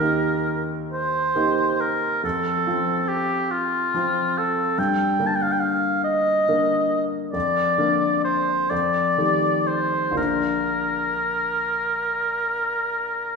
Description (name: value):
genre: classical, romantic duo for oboe and grand piano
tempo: 39-50 BPM (dotted quarters)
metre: 12/8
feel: rubato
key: Bb major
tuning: A4 = 441 Hz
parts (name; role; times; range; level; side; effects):
- warm oboe; melody; 0.0-13.4 s; F4 to A5; -21 LUFS; equal; none
- clear grand piano; accompaniment; 0.0-13.4 s; Bb1 to Bb4; -25 LUFS; left 1 dB; none
room: wet stone room reverb, RT60 1.4 s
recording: heard from further back in the room, nothing above 10.9 kHz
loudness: -20 LUFS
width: side -4 dB against mid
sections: 0.0-13.4 A section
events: none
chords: 0.0 Eb; 2.2 F; 4.8 Gm; 7.3 Bb/F; 8.7 F13; 10.2 Bb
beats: 0.91 2.24 3.51 | 4.78 6.05 7.35 8.71 | 10.17 11.70 13.18